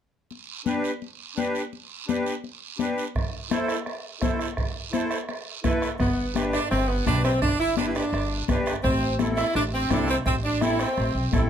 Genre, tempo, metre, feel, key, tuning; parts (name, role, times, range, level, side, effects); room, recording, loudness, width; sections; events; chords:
latin, cumbia; 169 BPM; 4/4; straight; A4 = 441 Hz
congas; percussion; 0.3-11.5 s; -29 LUFS; left 8 dB
guiro; percussion; 0.3-11.5 s; -38 LUFS; right 7 dB
accordion; accompaniment; 0.7-11.5 s; C4 to C5; -28 LUFS; right 1 dB; light tremolo tuning
bombo; percussion; 3.2-11.5 s; -29 LUFS; right 2 dB
bright saxophone section; melody; 6.0-11.3 s; B3 to E4; -25 LUFS; equal; plate reverb
upright bass; bass; 6.0-11.5 s; G1 to C2; -28 LUFS; equal
moderate small room reverb, RT60 0.5 s; -23 LUFS; side -9 dB against mid
0.3-6.0 A section; 6.0-11.5 B section
0.3 G; 3.2 Am; 6.0 G; 8.8 Am